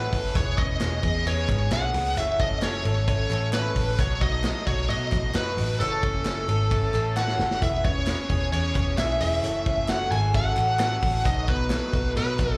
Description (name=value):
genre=jangly indie pop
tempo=132 BPM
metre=4/4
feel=straight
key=unclear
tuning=A4 = 441 Hz
part: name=smooth overdriven lead guitar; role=melody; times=0.0-12.6 s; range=A4 to G#5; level=-29 LUFS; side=equal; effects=none
part: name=picked twelve-string acoustic guitar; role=accompaniment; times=0.0-12.6 s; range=F#2 to B4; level=-39 LUFS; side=equal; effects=slapback echo
part: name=electric guitar through a small old amp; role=arpeggios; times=0.0-12.6 s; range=E3 to A4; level=-40 LUFS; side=equal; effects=subtle chorus, slapback echo
part: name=vintage muted picked electric bass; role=bass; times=0.0-12.6 s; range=E1 to B2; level=-29 LUFS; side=equal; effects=none
part: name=vintage drum kit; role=drums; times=0.1-12.5 s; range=hi-hat, kick drum, ride cymbal, snare drum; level=-31 LUFS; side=equal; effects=none
part: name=group handclap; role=percussion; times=0.8-12.5 s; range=none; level=-46 LUFS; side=equal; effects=none
part: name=vibraphone with soft mallets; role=second line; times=7.2-12.6 s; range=B3 to G#4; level=-38 LUFS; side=equal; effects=tape echo
room=light reverb, small room ambience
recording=live gig heard through the venue's PA, club reverb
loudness=-25 LUFS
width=mono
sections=0.0-12.6 A section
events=drum fill 7.2-7.6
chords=0.4 E6; 2.2 F#m7; 4.0 B7; 5.8 F#m7; 7.6 E6; 9.4 F#m7; 11.3 B7